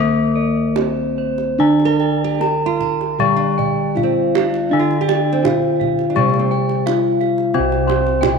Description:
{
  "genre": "Javanese gamelan",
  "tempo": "73-89 BPM",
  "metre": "4/4",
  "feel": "straight",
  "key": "C slendro",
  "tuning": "A4 = 440 Hz",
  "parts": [
    { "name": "gamelan-type bronze metallophone", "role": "melody", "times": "0.0-8.4 s", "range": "Bb3-45c to Bb4-45c", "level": "-20 LUFS", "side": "left 1 dB", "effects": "none" },
    { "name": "nylon-string guitar", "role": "second line", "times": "0.0-6.5 s", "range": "Bb3-45c to Bb4-45c", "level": "-23 LUFS", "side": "right 9 dB", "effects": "slapback echo" },
    { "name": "gamelan-type bronze metallophone", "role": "accompaniment", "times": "0.0-8.4 s", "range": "C3 to Bb3-45c", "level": "-21 LUFS", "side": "left 9 dB", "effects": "none" },
    { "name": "gamelan-type bossed gongs", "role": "arpeggios", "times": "0.0-8.4 s", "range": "C5 to C6", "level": "-26 LUFS", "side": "left 8 dB", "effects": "none" },
    { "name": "gamelan-type bronze metallophone", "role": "arpeggios", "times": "0.0-8.4 s", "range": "Bb4-45c to Bb5-45c", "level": "-24 LUFS", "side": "right 9 dB", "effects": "none" },
    { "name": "gamelan-type bossed gongs", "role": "bass", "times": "0.0-8.4 s", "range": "C2 to Bb4-45c", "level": "-23 LUFS", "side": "right 2 dB", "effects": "none" },
    { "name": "kendang", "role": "percussion", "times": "0.8-8.4 s", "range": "none", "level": "-24 LUFS", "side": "right 11 dB", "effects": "none" }
  ],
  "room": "wet echo chamber reverb, RT60 2.2 s",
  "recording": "1960s-style stereo with parts hard left and right",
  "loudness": "-15 LUFS",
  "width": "side -5 dB against mid",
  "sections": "0.0-7.5 A section",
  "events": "none",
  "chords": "none"
}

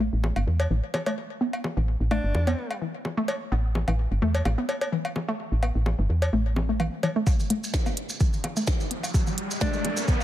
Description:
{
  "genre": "minimal techno",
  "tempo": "128 BPM",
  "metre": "4/4",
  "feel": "swing 54% on 16ths",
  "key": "unclear",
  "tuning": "A4 = 440 Hz",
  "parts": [
    { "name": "hollow square pluck", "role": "riff", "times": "0.0-10.0 s", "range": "E3 to C4", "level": "-30 LUFS", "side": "left 1 dB", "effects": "chorus, sidechain pumping, dub echo" },
    { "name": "woody FM bass", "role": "bass", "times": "0.0-6.9 s", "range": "G1 to E2", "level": "-24 LUFS", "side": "equal", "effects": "sidechain pumping" },
    { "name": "bongos and cowbell", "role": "percussion", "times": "0.2-10.2 s", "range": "none", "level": "-31 LUFS", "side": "left 1 dB", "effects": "ping-pong delay" },
    { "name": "warm alto saxophone", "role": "melody", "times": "2.1-2.8, 9.6-10.2 s", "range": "D4", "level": "-33 LUFS", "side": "equal", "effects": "ping-pong delay" },
    { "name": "electronic kick drum", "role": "drums", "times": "7.3-10.2 s", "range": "none", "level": "-24 LUFS", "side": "equal", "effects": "overdrive" },
    { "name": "maracas", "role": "percussion", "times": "7.3-10.2 s", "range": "none", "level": "-35 LUFS", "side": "right 2 dB", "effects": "none" },
    { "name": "riser", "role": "sound effects", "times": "8.3-10.2 s", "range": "none", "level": "-32 LUFS", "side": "equal", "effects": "none" },
    { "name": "minimal click drum kit", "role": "drums", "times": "7.5-9.9 s", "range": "hi-hat, snare drum", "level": "-33 LUFS", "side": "right 1 dB", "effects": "overdrive" }
  ],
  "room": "light reverb",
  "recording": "none",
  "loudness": "-24 LUFS",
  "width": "side -13 dB against mid",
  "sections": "0.0-7.3 A section; 7.3-10.2 B section",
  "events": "build-up 7.3-10.2; riser 8.3-10.2",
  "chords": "0.0 A5"
}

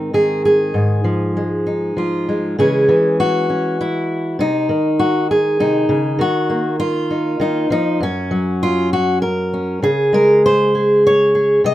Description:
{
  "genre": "folk, solo fingerstyle acoustic guitar",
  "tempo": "99 BPM",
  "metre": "3/4",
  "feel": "straight",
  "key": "unclear",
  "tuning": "A4 = 438 Hz",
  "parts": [
    { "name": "fingerpicked steel-string acoustic guitar", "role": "solo", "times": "0.0-11.7 s", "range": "Gb2 to Eb5", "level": "-14 LUFS", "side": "equal", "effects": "none" }
  ],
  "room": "moderate studio reverb, RT60 0.6 s",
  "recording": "rough home demo mix",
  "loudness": "-14 LUFS",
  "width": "side -14 dB against mid",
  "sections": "0.0-2.6 A section; 2.6-11.7 B section",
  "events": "none",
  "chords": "0.0 Abadd9; 0.7 Fm7/Ab; 2.6 Dbm; 4.4 Ab/C; 6.2 Ebm; 8.0 Gb; 9.8 Db5"
}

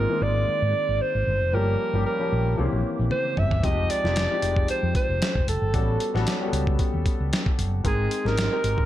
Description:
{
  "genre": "polished 1980s jazz-funk pop",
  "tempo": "114 BPM",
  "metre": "4/4",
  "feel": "swing 54% on 16ths",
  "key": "unclear",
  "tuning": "A4 = 440 Hz",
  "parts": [
    { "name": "breathy alto saxophone", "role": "melody", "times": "0.0-8.9 s", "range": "Ab4 to E5", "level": "-26 LUFS", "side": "right 2 dB", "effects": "none" },
    { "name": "warm grand piano", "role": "accompaniment", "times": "0.0-8.9 s", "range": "Eb3 to G5", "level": "-29 LUFS", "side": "left 3 dB", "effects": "tube saturation, analog chorus" },
    { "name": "mellow fretless electric bass", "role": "bass", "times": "0.0-8.9 s", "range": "F1 to Ab2", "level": "-25 LUFS", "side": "equal", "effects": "ensemble chorus" },
    { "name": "dusty soul sampler-style drum kit", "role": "drums", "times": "3.1-8.9 s", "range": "hi-hat, kick drum, snare drum, toms", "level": "-26 LUFS", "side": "equal", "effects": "gated reverb" }
  ],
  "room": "light reverb, digital ambience",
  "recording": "none",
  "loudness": "-21 LUFS",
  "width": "side -13 dB against mid",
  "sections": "0.0-8.9 A section",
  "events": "drum fill 3.1-3.6",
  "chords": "0.0 Ab69; 1.5 Gm7b5; 2.6 C7b9; 3.6 Fm9; 5.7 A13; 7.8 Abmaj9"
}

